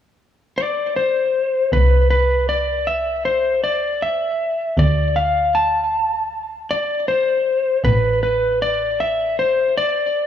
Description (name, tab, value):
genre	post-rock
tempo	78 BPM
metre	4/4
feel	straight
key	unclear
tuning	A4 = 440 Hz
part	lightly driven lead guitar	melody	0.6-10.3 s	B4 to A5	-18 LUFS	left 1 dB	digital delay
part	muted double bass	bass	1.7-10.3 s	A1 to D2	-19 LUFS	equal	none
room	moderate lush hall reverb, RT60 1.6 s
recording	small room ambience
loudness	-16 LUFS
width	side -9 dB against mid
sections	0.0-1.7 A section; 1.7-10.3 B section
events	none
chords	0.0 N.C.; 1.7 C; 4.8 D5; 7.8 Asus4